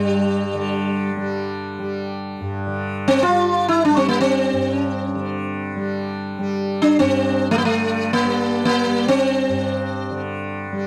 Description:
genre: indian classical, Hindustani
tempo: free time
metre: none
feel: none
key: G raga bhimpalasi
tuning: A4 = 440 Hz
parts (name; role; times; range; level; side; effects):
- sitar; melody; 0.0-10.2 s; G3 to F4; -20 LUFS; equal; none
- tanpura; drone; 0.0-10.9 s; G2 to G3; -27 LUFS; equal; none
room: light reverb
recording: dry, close 1970s-style studio recording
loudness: -20 LUFS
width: mono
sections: 0.0-2.7 A section; 2.7-10.9 A section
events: none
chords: none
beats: free time

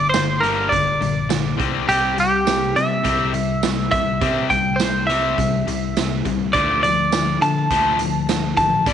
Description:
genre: indie rock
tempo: 103 BPM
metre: 4/4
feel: straight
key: unclear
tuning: A4 = 438 Hz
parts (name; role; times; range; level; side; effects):
- twelve-string electric guitar; melody; 0.0-8.9 s; G4 to A5; -19 LUFS; right 1 dB; slapback echo
- cranked stack guitar; riff; 0.0-8.9 s; G2 to C4; -22 LUFS; left 9 dB; overdrive
- fingered electric bass; bass; 0.0-8.9 s; G1 to D3; -27 LUFS; right 1 dB; none
- raw garage drum kit; drums; 0.1-8.9 s; hi-hat, kick drum, snare drum, tambourine; -25 LUFS; right 7 dB; none
room: light reverb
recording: 1960s-style stereo with parts hard left and right, nothing above 11.0 kHz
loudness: -17 LUFS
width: side -9 dB against mid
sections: 0.0-8.9 A section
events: none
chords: 0.0 Gm; 1.6 C; 6.5 Dm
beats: 0.13 0.72 1.30 | 1.88 2.47 3.05 3.63 | 4.21 4.79 5.38 5.96 | 6.54 7.12 7.70 8.28 | 8.86

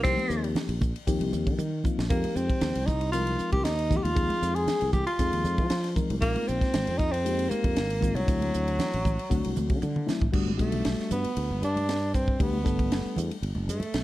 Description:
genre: electric jazz fusion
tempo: 116 BPM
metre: 4/4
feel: straight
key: G major from 10.3 s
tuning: A4 = 440 Hz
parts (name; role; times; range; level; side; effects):
- warm tenor saxophone; melody; 0.0-14.0 s; Gb3 to Ab4; -29 LUFS; equal; slapback echo
- mellow reed electric piano; accompaniment; 0.0-13.4 s; F3 to Bb4; -32 LUFS; left 4 dB; none
- sustaining fretless electric bass; bass; 0.0-14.0 s; F#1 to F3; -30 LUFS; equal; none
- tight funk drum kit; drums; 0.0-14.0 s; crash cymbal, hi-hat, kick drum, ride cymbal, snare drum, toms; -30 LUFS; equal; none
- congas; percussion; 0.2-13.9 s; none; -34 LUFS; right 2 dB; none
room: light reverb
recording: dark, warm production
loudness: -24 LUFS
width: side -16 dB against mid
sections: 0.0-10.3 A section; 10.3-14.0 B section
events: drum fill 1.6-2.1, 9.8-10.3; tenor saxophone solo 10.3-14.0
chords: 0.0 Eb69; 2.1 Fm9; 6.2 Bb9sus4; 8.3 D7; 10.3 Gmaj7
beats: | 0.04 0.55 1.07 1.58 | 2.10 2.62 3.13 3.65 | 4.16 4.68 5.19 5.71 | 6.22 6.74 7.25 7.77 | 8.28 8.80 9.31 9.83 | 10.34 10.86 11.37 11.89 | 12.40 12.91 13.43 13.94

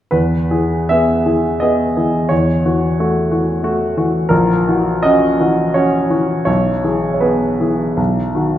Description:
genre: classical, romantic character piece for solo piano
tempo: 75-93 BPM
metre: 3/4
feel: rubato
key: E major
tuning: A4 = 440 Hz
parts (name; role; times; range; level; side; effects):
- clear grand piano; solo; 0.1-8.6 s; A#1 to E5; -13 LUFS; equal; none
room: wet recital hall reverb, RT60 1.7 s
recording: recorded in a church or concert hall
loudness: -13 LUFS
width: side -12 dB against mid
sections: 0.1-8.6 A section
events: none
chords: 0.1 E; 2.3 F#m7/E; 4.3 F#7/A#; 6.5 E/B; 8.0 B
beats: | 0.12 0.90 1.61 | 2.31 2.99 3.64 | 4.31 5.04 5.74 | 6.47 7.23 7.98

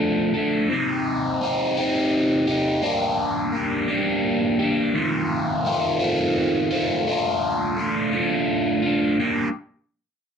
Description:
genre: rock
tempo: 57 BPM (dotted quarters)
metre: 6/8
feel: straight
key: G minor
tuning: A4 = 440 Hz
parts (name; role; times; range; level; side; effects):
- crunchy overdriven guitar; solo; 0.0-9.5 s; Eb3 to A4; -20 LUFS; equal; phaser
room: moderate small room reverb, RT60 0.5 s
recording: dark, warm production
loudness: -20 LUFS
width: side -7 dB against mid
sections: 0.0-9.2 A section; 9.2-10.4 B section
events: none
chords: 0.0 Dm; 0.7 Cm; 2.8 Gm; 5.0 F5; 7.1 Dm; 9.2 Gm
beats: | 0.72 1.78 | 2.84 3.90 | 4.95 6.01 | 7.07 8.13 | 9.19

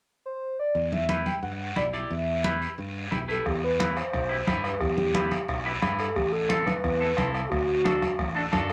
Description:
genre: latin, cumbia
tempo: 178 BPM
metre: 4/4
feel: straight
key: E minor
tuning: A4 = 441 Hz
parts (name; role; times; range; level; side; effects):
- pure sine lead; melody; 0.3-8.7 s; F#4 to G5; -30 LUFS; equal; chorus
- modern bright fingered electric bass; bass; 0.7-8.7 s; A1 to G2; -35 LUFS; equal; none
- guiro; percussion; 0.7-8.7 s; none; -40 LUFS; equal; none
- congas; percussion; 0.8-8.7 s; none; -34 LUFS; equal; none
- clean electric guitar; accompaniment; 1.1-8.7 s; C4 to D5; -33 LUFS; equal; phaser
- bombo; percussion; 3.5-8.7 s; none; -34 LUFS; equal; none
room: wet club reverb, RT60 0.6 s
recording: none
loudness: -27 LUFS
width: mono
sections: 0.8-3.5 A section; 3.5-8.7 B section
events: none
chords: 0.0 N.C.; 0.8 Em; 6.2 Am; 7.5 D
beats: 0.08 0.42 | 0.76 1.09 1.43 1.77 | 2.11 2.45 2.78 3.12 | 3.46 3.80 4.13 4.47 | 4.81 5.15 5.49 5.82 | 6.16 6.50 6.84 7.17 | 7.51 7.85 8.19 8.52

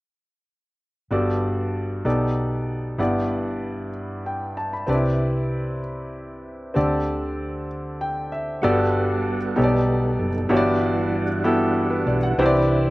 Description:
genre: gospel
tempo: 64 BPM (dotted quarters)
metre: 6/8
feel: straight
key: G major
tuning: A4 = 439 Hz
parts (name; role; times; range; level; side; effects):
- clear baby grand piano; accompaniment; 1.1-12.9 s; G2 to B5; -22 LUFS; equal; slapback echo
- hollow-body short-scale fingered electric bass; bass; 1.1-12.9 s; F#1 to D2; -27 LUFS; equal; none
- percussive tonewheel organ; sustained chords; 8.6-12.9 s; E3 to F#5; -26 LUFS; right 2 dB; slow rotary speaker, chorus vibrato
room: little or no reverb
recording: recorded outdoors, with no room sound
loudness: -20 LUFS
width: side -19 dB against mid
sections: 1.1-8.6 A section; 8.6-12.9 B section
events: grand piano fill 7.7-8.6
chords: 1.1 Gmaj9; 2.1 B7alt; 3.0 Em9/G; 4.9 Cmaj9; 6.8 D7sus4; 8.6 Gmaj9; 9.6 B7alt; 10.5 Em9/G; 12.4 Cmaj9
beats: | 1.11 2.05 | 3.00 3.94 | 4.88 5.82 | 6.76 7.70 | 8.63 9.57 | 10.51 11.44 | 12.38

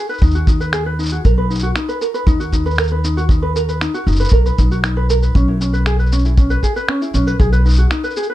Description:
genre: folktronica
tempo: 117 BPM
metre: 4/4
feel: straight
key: B major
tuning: A4 = 439 Hz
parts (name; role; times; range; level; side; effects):
- ukulele; arpeggios; 0.0-8.3 s; C#4 to B4; -20 LUFS; equal; tape echo
- electronic cabasa and finger snaps; drums; 0.1-8.3 s; none; -24 LUFS; equal; studio ambience
- upright bass; bass; 0.2-7.8 s; F#1 to D#2; -16 LUFS; equal; none
- kick drum; drums; 0.2-7.5 s; none; -14 LUFS; equal; studio ambience
room: light reverb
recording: dark, warm production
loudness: -13 LUFS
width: side -14 dB against mid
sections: 0.0-8.3 A section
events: none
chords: 0.0 G#m7; 1.2 Bmaj7; 5.3 C#m7/B; 7.4 G#m/B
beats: 0.22 0.73 | 1.24 1.76 2.27 2.78 | 3.29 3.81 4.32 4.83 | 5.35 5.86 6.37 6.88 | 7.40 7.91

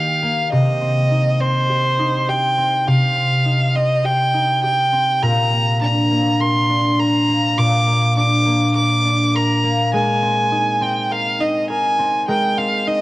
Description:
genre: folktronica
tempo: 102 BPM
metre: 4/4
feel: swing 56% on 16ths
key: unclear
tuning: A4 = 440 Hz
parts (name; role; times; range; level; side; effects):
- rich violin; melody; 0.0-13.0 s; C5 to D6; -18 LUFS; right 1 dB; cassette tape, plate reverb, analog delay
- concert harp; arpeggios; 0.0-13.0 s; Bb2 to Bb4; -18 LUFS; equal; cassette tape, analog delay
room: moderate studio reverb, RT60 0.5 s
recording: home recording on cassette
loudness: -15 LUFS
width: side -18 dB against mid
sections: 0.0-13.0 A section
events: none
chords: 0.0 Eb; 0.5 Cm; 5.2 Bb; 9.9 Abadd9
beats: | 0.52 1.11 1.69 2.28 | 2.87 3.46 4.05 4.63 | 5.22 5.81 6.40 6.99 | 7.58 8.16 8.75 9.34 | 9.93 10.52 11.11 11.69 | 12.28 12.87

